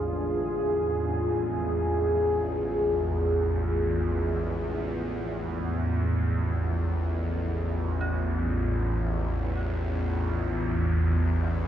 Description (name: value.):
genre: dark ambient drone.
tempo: free time.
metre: none.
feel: none.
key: unclear.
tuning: A4 = 440 Hz.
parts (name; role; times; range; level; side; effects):
deep dark ambient pad; sustained chords; 0.0-11.7 s; D3 to E5; -30 LUFS; left 1 dB; chorus, built-in reverb.
dark detuned synth bell; arpeggios; 0.0-11.7 s; D4 to F4; -44 LUFS; right 2 dB; none.
bowed-like drone; drone; 0.0-11.7 s; A1 to E2; -27 LUFS; equal; built-in reverb, phaser.
room: moderate plate reverb, RT60 2.6 s.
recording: dreamy mix soaked in reverb, cassette tape.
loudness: -25 LUFS.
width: side -10 dB against mid.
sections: 0.0-11.7 A section.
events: none.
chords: 0.0 Fm; 10.1 Dm.